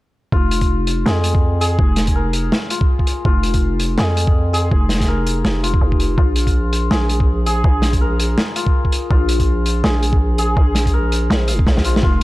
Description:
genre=half-time drum and bass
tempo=164 BPM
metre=4/4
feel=swing 59% on 16ths, half-time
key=F minor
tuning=A4 = 440 Hz
part: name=santur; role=arpeggios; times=0.3-12.2 s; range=F4 to F5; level=-23 LUFS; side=left 3 dB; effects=tape echo
part: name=growling 808-style bass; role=bass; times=0.3-12.2 s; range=F1 to F2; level=-18 LUFS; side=equal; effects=none
part: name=electronic kick drum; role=drums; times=0.3-12.1 s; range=none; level=-16 LUFS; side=equal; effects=none
part: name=crunchy breakbeat drum kit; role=drums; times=0.5-12.0 s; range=hi-hat, snare drum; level=-21 LUFS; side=equal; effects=none
room=small room ambience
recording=dark, warm production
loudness=-14 LUFS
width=side -18 dB against mid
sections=0.3-12.2 A section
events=drum fill 11.7-12.0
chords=0.3 Fm; 6.2 Bb5

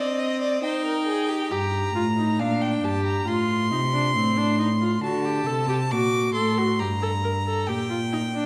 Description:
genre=classical, baroque-style fugue for string quartet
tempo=68 BPM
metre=4/4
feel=straight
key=unclear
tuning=A4 = 440 Hz
part: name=rich violin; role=melody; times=0.0-8.5 s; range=Eb5 to D6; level=-30 LUFS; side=equal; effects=none
part: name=rich violin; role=second line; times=0.0-1.5 s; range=G4 to Eb5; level=-30 LUFS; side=equal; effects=none
part: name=rich viola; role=accompaniment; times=0.0-8.5 s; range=C4 to Bb4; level=-29 LUFS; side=equal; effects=none
part: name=warm cello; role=bass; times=1.5-8.5 s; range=G2 to D3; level=-27 LUFS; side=equal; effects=none
room=wet recital hall reverb, RT60 1.6 s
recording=none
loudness=-24 LUFS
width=mono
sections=0.0-8.5 A section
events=none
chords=0.0 Cm; 1.5 Gm; 3.3 Am; 5.0 D7; 6.8 Gm

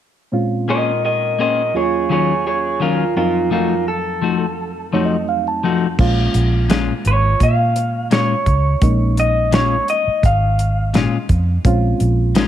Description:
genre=straight-eighth soul blues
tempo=85 BPM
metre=4/4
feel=swing 54% on 16ths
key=Bb minor from 6.0 s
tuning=A4 = 440 Hz
part: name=reed electric piano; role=accompaniment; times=0.3-12.5 s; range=Eb2 to A5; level=-22 LUFS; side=right 3 dB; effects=phaser
part: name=electric guitar through a small old amp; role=melody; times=0.7-11.6 s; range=F4 to F5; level=-19 LUFS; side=equal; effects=spring reverb
part: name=clean electric guitar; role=stabs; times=0.7-12.5 s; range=Bb2 to C5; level=-22 LUFS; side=left 6 dB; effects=slapback echo
part: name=vintage muted fingered electric bass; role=bass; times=6.0-12.5 s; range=Ab1 to Bb2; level=-17 LUFS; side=right 1 dB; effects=none
part: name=warm soul drum kit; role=drums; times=6.0-12.5 s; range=crash cymbal, hi-hat, kick drum, snare drum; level=-18 LUFS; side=equal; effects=none
room=studio reverb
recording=none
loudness=-14 LUFS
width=side -10 dB against mid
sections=0.3-6.0 A section; 6.0-12.5 B section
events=reed electric piano fill 4.6-6.0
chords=0.3 Bbm9; 1.7 Ebm9; 3.2 F7b9; 6.0 Bbm7

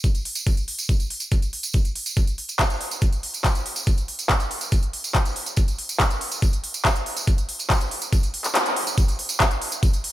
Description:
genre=trance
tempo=141 BPM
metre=4/4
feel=straight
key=none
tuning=none
part: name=electronic kick drum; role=drums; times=0.0-9.9 s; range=none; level=-20 LUFS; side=equal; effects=none
part: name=techno drum kit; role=drums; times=0.0-10.1 s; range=handclaps, hi-hat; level=-25 LUFS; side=equal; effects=overdrive
part: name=tambourine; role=percussion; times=0.0-10.0 s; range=none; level=-30 LUFS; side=right 3 dB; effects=none
room=light reverb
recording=none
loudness=-20 LUFS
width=side -14 dB against mid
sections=0.0-9.0 A section; 9.0-10.1 B section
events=kick drops out 8.6-9.0; band accent 8.6; drop 9.0-10.1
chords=none

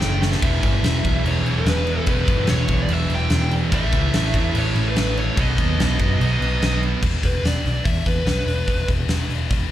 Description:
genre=hard rock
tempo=146 BPM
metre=4/4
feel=straight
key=unclear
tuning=A4 = 440 Hz
part: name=high-gain lead guitar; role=melody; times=0.0-8.9 s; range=B4 to G5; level=-27 LUFS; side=left 2 dB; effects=distortion, slapback echo, digital delay
part: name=warm analog pad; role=sustained chords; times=0.0-7.0 s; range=E3 to B4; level=-36 LUFS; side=left 3 dB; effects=none
part: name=distorted electric guitar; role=riff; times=0.0-7.0 s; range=E2 to B3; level=-26 LUFS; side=right 9 dB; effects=overdrive, slapback echo
part: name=distorted electric guitar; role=riff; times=0.0-7.0 s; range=E2 to B3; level=-31 LUFS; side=equal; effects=none
part: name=scooped high-gain guitar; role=riff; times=0.0-9.7 s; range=E2 to B3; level=-29 LUFS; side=left 10 dB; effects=distortion
part: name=overdriven picked electric bass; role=bass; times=0.0-9.6 s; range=E1 to F#2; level=-22 LUFS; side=equal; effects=none
part: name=huge arena drum kit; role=drums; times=0.0-9.6 s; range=crash cymbal, hi-hat, kick drum, snare drum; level=-23 LUFS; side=equal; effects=none
room=small room ambience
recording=live gig heard through the venue's PA, club reverb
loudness=-18 LUFS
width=side -12 dB against mid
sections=0.0-7.0 A section; 7.0-9.7 B section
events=drum fill 0.0-0.4; lead electric guitar solo 7.0-9.7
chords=0.4 E5; 3.7 A; 5.4 B; 7.0 E5

